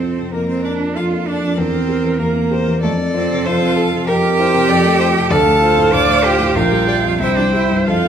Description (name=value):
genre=quick classical-period movement for piano quintet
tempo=96 BPM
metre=2/4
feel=rubato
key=unclear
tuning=A4 = 440 Hz
part: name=clear violin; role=melody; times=0.0-8.1 s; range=A4 to D6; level=-23 LUFS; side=left 6 dB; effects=none
part: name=rich cello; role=second line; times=0.0-8.1 s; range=A3 to D5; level=-18 LUFS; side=right 6 dB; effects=none
part: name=rich violin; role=second line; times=0.0-8.1 s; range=G4 to D5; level=-23 LUFS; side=left 4 dB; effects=none
part: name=clear viola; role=accompaniment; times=0.0-8.1 s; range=Bb3 to G5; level=-22 LUFS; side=right 4 dB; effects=none
part: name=dark baby grand piano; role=accompaniment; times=0.0-8.1 s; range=Bb1 to G4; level=-18 LUFS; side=left 2 dB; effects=none
room=wet recital hall reverb, RT60 1.5 s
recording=none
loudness=-13 LUFS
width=side -8 dB against mid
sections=0.0-8.1 A section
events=none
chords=0.3 Bbmaj9/F; 1.6 C7/E; 2.8 F; 4.1 C7/F; 4.7 F; 5.3 Dm; 6.6 Gm7/Bb; 7.2 C